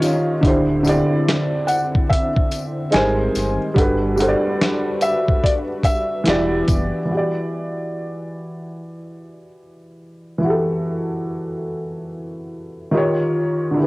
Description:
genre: lo-fi hip hop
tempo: 72 BPM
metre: 4/4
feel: swing 65% on 16ths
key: E minor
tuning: A4 = 442 Hz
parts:
  - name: dark upright piano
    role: accompaniment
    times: 0.0-13.9 s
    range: D3 to E#5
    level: -20 LUFS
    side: equal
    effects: cassette tape
  - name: warm analog pad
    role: sustained chords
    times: 0.0-7.1 s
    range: D3 to B4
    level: -28 LUFS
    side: left 1 dB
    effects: chorus, cassette tape
  - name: dusty soul sampler-style drum kit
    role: drums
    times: 0.0-6.9 s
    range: hi-hat, kick drum, snare drum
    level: -19 LUFS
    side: equal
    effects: none
  - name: tambourine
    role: percussion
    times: 0.0-6.9 s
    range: none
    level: -35 LUFS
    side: left 6 dB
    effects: none
  - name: sub bass with octave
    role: bass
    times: 0.4-6.9 s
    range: D1 to G#1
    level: -26 LUFS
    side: equal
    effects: none
  - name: felt-muted upright piano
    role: melody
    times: 1.7-6.6 s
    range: D5 to G#5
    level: -22 LUFS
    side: left 1 dB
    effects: cassette tape, tape echo
room: light reverb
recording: home recording on cassette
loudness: -17 LUFS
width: side -21 dB against mid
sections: 0.0-7.1 A section; 7.1-13.9 B section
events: break 0.0-0.4; upright piano fill 0.0-0.4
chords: 0.4 D9sus4; 2.9 G#maj7; 3.8 Gmaj7; 6.3 Em7; 7.1 Em9; 12.9 D#9

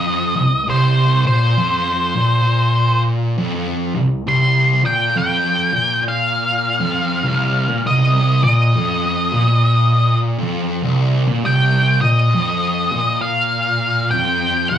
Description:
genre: metal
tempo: 67 BPM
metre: 4/4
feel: swing 64% on 8ths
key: C minor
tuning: A4 = 438 Hz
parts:
  - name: octave-fuzz lead guitar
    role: melody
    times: 0.0-14.8 s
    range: C5 to C6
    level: -18 LUFS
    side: left 1 dB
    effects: distortion, slapback echo
  - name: thick fuzz guitar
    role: riff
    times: 0.0-14.8 s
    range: C2 to Bb2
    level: -16 LUFS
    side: equal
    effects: distortion, slapback echo
room: light reverb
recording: live gig heard through the venue's PA, club reverb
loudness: -14 LUFS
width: side -10 dB against mid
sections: 0.0-14.8 A section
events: none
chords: 0.0 C7sus4

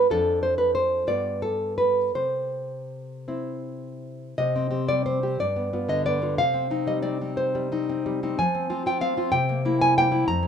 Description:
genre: romantic piece for solo classical guitar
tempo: 52-66 BPM (dotted quarters)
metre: 6/8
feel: rubato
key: C major, C minor from 4.4 s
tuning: A4 = 440 Hz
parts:
  - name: nylon-string guitar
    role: solo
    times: 0.0-10.5 s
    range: F2 to Bb5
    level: -22 LUFS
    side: equal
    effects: none
room: moderate studio reverb, RT60 0.5 s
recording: rough home demo mix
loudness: -22 LUFS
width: side -8 dB against mid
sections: 0.0-4.4 A section; 4.4-10.5 B section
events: none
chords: 0.1 Dm/F; 1.1 G7; 2.2 C; 4.4 Cm; 5.4 G7; 6.4 Cm; 8.4 Fm; 9.3 C7

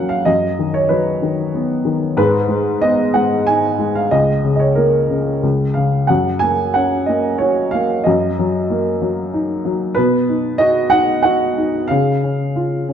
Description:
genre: classical, lyrical solo piano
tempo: 93 BPM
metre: 3/4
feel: rubato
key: unclear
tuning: A4 = 440 Hz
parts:
  - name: dark upright piano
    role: solo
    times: 0.0-12.9 s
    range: C#2 to G#5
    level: -14 LUFS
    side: equal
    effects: none
room: moderate recital hall reverb, RT60 1.5 s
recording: dark, warm production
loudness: -14 LUFS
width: side -8 dB against mid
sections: 0.0-12.9 A section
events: none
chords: 0.3 B/F#; 2.2 G#m; 4.1 A#madd11/C#; 5.4 N.C.; 6.1 F#; 8.1 D#m/F#; 10.0 B; 11.9 C#

